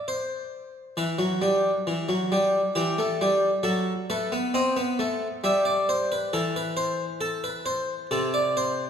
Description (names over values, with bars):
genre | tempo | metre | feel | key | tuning
classical, baroque-style two-part invention for harpsichord | 68 BPM | 3/4 | straight | A minor | A4 = 441 Hz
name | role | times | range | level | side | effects
harpsichord | solo | 0.1-8.9 s | C3 to E5 | -23 LUFS | equal | none
room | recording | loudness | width
wet scoring stage reverb, RT60 1.9 s | recorded in a church or concert hall | -23 LUFS | side -8 dB against mid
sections
0.0-8.9 A section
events
none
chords
0.0 N.C.; 1.0 Em; 3.7 B7/F#; 5.4 Em/G; 6.3 Am/E; 8.1 Am/C